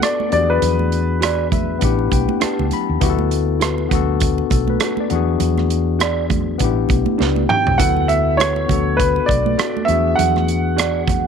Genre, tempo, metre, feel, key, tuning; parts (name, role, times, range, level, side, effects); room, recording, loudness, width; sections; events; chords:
lush 1970s-style soul; 100 BPM; 4/4; swing 58% on 16ths; A4 = 440 Hz
clear grand piano; melody; 0.0-2.2, 7.5-11.3 s; B4 to G5; -19 LUFS; right 1 dB; tape echo
barky tine electric piano; accompaniment; 0.0-11.3 s; B3 to B5; -21 LUFS; left 17 dB; overdrive
electric guitar through a small old amp; riff; 0.0-11.0 s; B3 to D5; -25 LUFS; right 12 dB
modern studio drum kit; drums; 0.0-11.2 s; hi-hat, kick drum, rim click, snare drum, toms; -21 LUFS; right 2 dB
congas; percussion; 0.0-11.2 s; -26 LUFS; right 13 dB
hollow-body short-scale fingered electric bass; bass; 0.3-11.3 s; A1 to E2; -20 LUFS; equal
light reverb, studio ambience; 1960s-style stereo with parts hard left and right; -15 LUFS; side -7 dB against mid
0.0-11.3 A section
tine electric piano fill 1.2-3.0; drum fill 7.2-7.8
0.3 E9; 1.8 A9sus4; 3.0 D69; 3.9 Bm7; 5.1 E9; 6.6 A9sus4; 7.8 D69; 8.7 Bm9; 9.9 E9